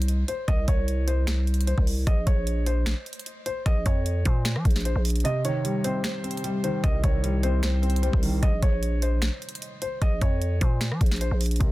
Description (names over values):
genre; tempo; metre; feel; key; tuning
hip hop, trap; 151 BPM; 4/4; half-time; unclear; A4 = 440 Hz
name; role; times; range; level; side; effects
dark concert grand piano; melody; 0.0-11.4 s; C5 to Eb5; -32 LUFS; equal; digital delay
growling 808-style bass; bass; 0.0-11.7 s; Bb1 to F3; -24 LUFS; equal; none
trap drum kit; drums; 0.0-11.7 s; finger snaps, hi-hat, kick drum, rim click, snare drum; -25 LUFS; equal; none
felt-muted upright piano; accompaniment; 5.2-8.5, 11.6-11.7 s; C3 to C5; -29 LUFS; equal; none
room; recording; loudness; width
little or no reverb; dense, heavily limited modern master; -22 LUFS; side -18 dB against mid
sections
0.0-11.7 A section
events
kick muted 5.2-6.0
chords
0.0 N.C.; 2.1 Bbm; 5.2 Cm; 8.4 Bbm